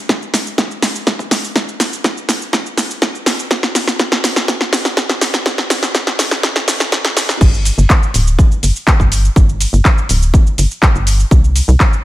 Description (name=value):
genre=progressive house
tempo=123 BPM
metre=4/4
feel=straight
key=unclear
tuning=A4 = 440 Hz
part: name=electronic kick drum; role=drums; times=0.1-11.9 s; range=none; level=-13 LUFS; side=equal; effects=high-pass filter on kick, studio reverb, high-pass filter on room
part: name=house drum kit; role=drums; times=0.1-12.0 s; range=cabasa, crash cymbal, handclaps, hi-hat, snare drum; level=-15 LUFS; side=equal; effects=sidechain pumping on perc, studio reverb, sidechain pumping on hats, sidechain pumping on cymbals
part: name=tight sequencer bass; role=bass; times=7.4-11.8 s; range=D1 to C2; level=-12 LUFS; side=equal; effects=sidechain pumping
room=light reverb, digital ambience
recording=high-pass filter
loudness=-12 LUFS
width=side -16 dB against mid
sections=0.0-7.4 A section; 7.4-12.0 B section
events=build-up 0.0-7.4; drum fill 0.0-7.4; drop 7.4-12.0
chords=none